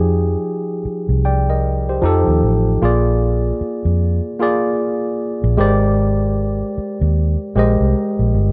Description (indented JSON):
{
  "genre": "R&B",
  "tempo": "76 BPM",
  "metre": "4/4",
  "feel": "swing 62% on 16ths",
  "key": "unclear",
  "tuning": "A4 = 440 Hz",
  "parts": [
    { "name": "tine electric piano", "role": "accompaniment", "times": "0.0-8.5 s", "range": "F3 to G5", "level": "-20 LUFS", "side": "equal", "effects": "none" },
    { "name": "vintage muted fingered electric bass", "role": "bass", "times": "0.0-8.5 s", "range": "G1 to F2", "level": "-19 LUFS", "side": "equal", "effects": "none" }
  ],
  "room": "light reverb",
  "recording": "dark, warm production",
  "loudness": "-17 LUFS",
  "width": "mono",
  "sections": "0.0-8.5 A section",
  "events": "none",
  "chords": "0.0 Fm9; 2.0 F9; 2.8 Bb7; 5.6 Abmaj9#11",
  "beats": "0.44 1.23 2.02 | 2.81 3.60 4.39 5.18 | 5.97 6.76 7.55 8.34"
}